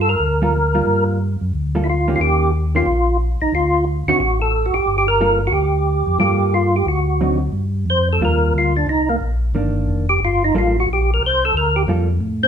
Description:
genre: jazz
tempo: 180 BPM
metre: 4/4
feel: swing 64% on 8ths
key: G minor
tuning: A4 = 439 Hz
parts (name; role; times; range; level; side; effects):
- percussive tonewheel organ; melody; 0.0-12.5 s; Bb3 to C5; -17 LUFS; equal; slow rotary speaker, chorus vibrato
- mellow tonewheel organ; bass; 0.0-12.5 s; F1 to A2; -19 LUFS; equal; chorus vibrato, slow rotary speaker
- hollow-body jazz guitar; accompaniment; 0.4-12.1 s; D3 to A4; -22 LUFS; right 2 dB; none
room: wet studio reverb, RT60 0.9 s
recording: band playing live in one room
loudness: -15 LUFS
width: side -8 dB against mid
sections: 0.0-7.5 A section; 7.5-12.5 B section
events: tonewheel organ solo 7.5-12.5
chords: 0.0 Gm7; 2.2 Eb7; 3.5 D; 4.9 Gm9; 6.9 D7b9; 7.5 Gm7; 8.9 Cm9; 10.2 Gm9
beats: 0.19 0.52 | 0.86 1.19 1.52 1.86 | 2.19 2.52 2.86 3.19 | 3.53 3.86 4.19 4.53 | 4.86 5.19 5.53 5.86 | 6.20 6.53 6.86 7.20 | 7.53 7.86 8.20 8.53 | 8.87 9.20 9.53 9.87 | 10.20 10.53 10.87 11.20 | 11.54 11.87 12.20

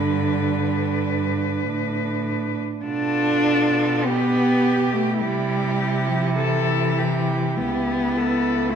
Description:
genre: classical, lyrical piece for cello ensemble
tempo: 47-55 BPM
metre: 4/4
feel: rubato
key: unclear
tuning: A4 = 441 Hz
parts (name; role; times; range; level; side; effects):
- rich cello; melody; 0.0-8.8 s; E4 to B4; -27 LUFS; left 5 dB; none
- warm cello; second line; 0.0-8.8 s; D4 to G4; -27 LUFS; right 8 dB; none
- warm cello; accompaniment; 0.0-8.8 s; D3 to D4; -22 LUFS; left 1 dB; none
- warm cello; bass; 0.0-8.8 s; C#2 to C3; -26 LUFS; right 2 dB; none
room: wet scoring stage reverb, RT60 1.6 s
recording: dark, warm production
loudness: -19 LUFS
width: side -7 dB against mid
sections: 0.0-8.8 A section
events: none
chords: 0.0 G; 2.8 G7/B; 5.2 C; 7.6 A7/C#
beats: 0.39 1.62 | 2.84 4.04 5.21 6.35 | 7.57 8.69

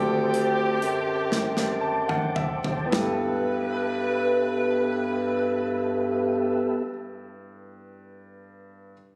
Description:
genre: slow gospel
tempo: 34-44 BPM (dotted quarters)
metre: 6/8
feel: straight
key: G major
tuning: A4 = 440 Hz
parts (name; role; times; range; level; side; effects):
- clear saxophone section; melody; 0.0-6.8 s; C4 to B4; -30 LUFS; equal; none
- clear grand piano; accompaniment; 0.0-8.9 s; G2 to A5; -35 LUFS; equal; none
- mellow tonewheel organ; sustained chords; 0.0-6.8 s; B3 to D6; -30 LUFS; equal; fast rotary speaker, chorus vibrato
- warm bass clarinet; bass; 0.0-6.8 s; D2 to G2; -32 LUFS; equal; none
- modern studio drum kit; drums; 0.3-3.2 s; hi-hat, snare drum, toms; -32 LUFS; equal; none
room: moderate concert hall reverb, RT60 2.0 s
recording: recorded on a phone in the room, club reverb, compression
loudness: -25 LUFS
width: mono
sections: 0.0-2.9 A section; 2.9-6.4 B section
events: slowing down 0.0-2.9; drum fill 1.3-2.9; grand piano fill 1.3-2.9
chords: 0.0 D7sus4; 2.9 G69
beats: 1.30 | 2.92 4.67

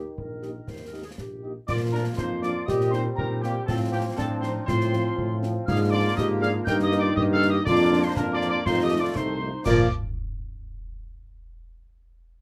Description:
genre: military-style march for wind band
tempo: 120 BPM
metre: 2/4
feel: straight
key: Bb major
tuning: A4 = 439 Hz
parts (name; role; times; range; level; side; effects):
- mellow woodwind section; second line; 0.0-9.9 s; Bb3 to D5; -33 LUFS; equal; none
- warm euphonium; second line; 0.0-9.4 s; Eb3 to G4; -33 LUFS; equal; none
- mellow French horn section; accompaniment; 0.0-9.9 s; Eb3 to G4; -34 LUFS; equal; none
- mellow tuba; bass; 0.0-9.9 s; Bb1 to Bb2; -29 LUFS; equal; none
- concert bass drum, concert snare drum and clash cymbals; drums; 0.2-9.9 s; none; -35 LUFS; equal; none
- mellow trumpet section; melody; 0.4-9.9 s; G4 to G5; -35 LUFS; equal; none
- mellow piccolo; second line; 1.7-9.9 s; G5 to G6; -34 LUFS; equal; none
- bright trombone section; sustained chords; 1.7-9.9 s; D3 to C4; -36 LUFS; equal; none
room: light reverb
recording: none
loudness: -24 LUFS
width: mono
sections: 0.0-1.7 A section; 1.7-9.7 B section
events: none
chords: 0.0 Eb; 1.7 Bb; 2.7 C5/Bb; 3.7 F/A; 5.7 Bb7/Ab; 6.7 Eb/G; 7.7 Bb/F; 8.7 F7; 9.7 Bb5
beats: 0.19 | 0.69 1.19 | 1.69 2.19 | 2.69 3.18 | 3.68 4.18 | 4.68 5.18 | 5.68 6.18 | 6.67 7.17 | 7.67 8.17 | 8.67 9.17 | 9.67

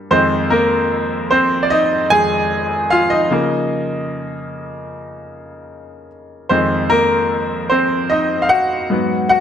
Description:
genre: R&B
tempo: 75 BPM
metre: 4/4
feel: straight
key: F minor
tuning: A4 = 440 Hz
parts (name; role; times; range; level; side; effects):
- bright grand piano; solo; 0.0-9.4 s; F2 to Ab5; -14 LUFS; equal; none
room: light reverb, studio reverb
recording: none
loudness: -14 LUFS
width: side -8 dB against mid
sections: 0.0-9.4 A section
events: grand piano solo 0.0-9.4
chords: 0.1 Fm7; 3.3 Db69; 6.5 Fm7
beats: | 0.10 0.91 1.71 2.50 | 3.31 4.11 4.91 5.71 | 6.50 7.30 8.11 8.90

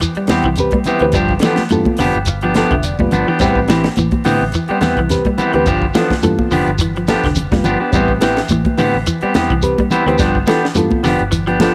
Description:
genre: afrobeat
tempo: 106 BPM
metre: 4/4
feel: swing 55% on 16ths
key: A minor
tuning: A4 = 440 Hz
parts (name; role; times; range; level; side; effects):
- electric guitar at the edge of break-up; arpeggios; 0.0-11.7 s; D3 to G3; -24 LUFS; equal; cassette tape
- tight funk drum kit; drums; 0.0-11.7 s; hi-hat, kick drum, snare drum; -24 LUFS; equal; cassette tape
- shekere; percussion; 0.0-11.7 s; none; -24 LUFS; equal; none
- fingered electric bass; bass; 0.2-11.7 s; F1 to A2; -24 LUFS; equal; none
- electric guitar at the edge of break-up; stabs; 0.3-11.7 s; E3 to G4; -19 LUFS; equal; spring reverb, cassette tape, analog delay
- congas; percussion; 0.3-11.7 s; none; -20 LUFS; equal; none
- reed electric piano; accompaniment; 0.6-11.7 s; B3 to A5; -21 LUFS; equal; phaser, cassette tape
room: light reverb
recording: home recording on cassette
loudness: -15 LUFS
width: mono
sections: 0.0-11.7 A section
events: reed electric piano fill 1.7-3.4, 11.3-11.7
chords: 0.0 Am9 (rootless); 1.1 G7; 3.4 Am9; 5.7 G7; 7.9 Am9; 10.2 G7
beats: 0.01 0.58 | 1.14 1.71 2.27 2.84 | 3.40 3.97 4.53 5.10 | 5.66 6.23 6.80 7.36 | 7.93 8.49 9.06 9.63 | 10.19 10.76 11.32

